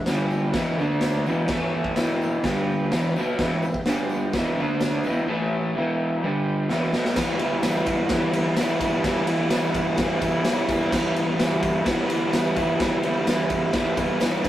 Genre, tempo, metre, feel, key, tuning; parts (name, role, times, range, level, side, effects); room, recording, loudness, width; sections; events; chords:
garage rock duo or trio; 128 BPM; 4/4; straight; E minor; A4 = 441 Hz
overdriven combo organ; sustained chords; 0.0-7.1 s; G4 to B5; -32 LUFS; equal
crunchy overdriven guitar; riff; 0.0-14.5 s; E2 to E4; -22 LUFS; equal
raw garage drum kit; drums; 0.1-14.5 s; crash cymbal, kick drum, ride cymbal, snare drum; -26 LUFS; equal
tambourine; percussion; 0.1-14.5 s; -47 LUFS; left 2 dB
light reverb; rough rehearsal-room recording, tube saturation; -21 LUFS; side -13 dB against mid
0.0-7.2 A section; 7.2-14.5 B section
transistor combo organ fill 2.7-3.4; drum fill 6.7-7.2
0.1 G5; 0.6 Em; 0.8 D5; 1.3 Em; 1.5 A5; 2.0 Em; 2.4 G5; 2.9 Em; 3.9 G5; 4.3 Em; 4.6 D5; 5.0 Em; 5.3 A5; 5.8 Em; 6.2 G5; 6.7 Em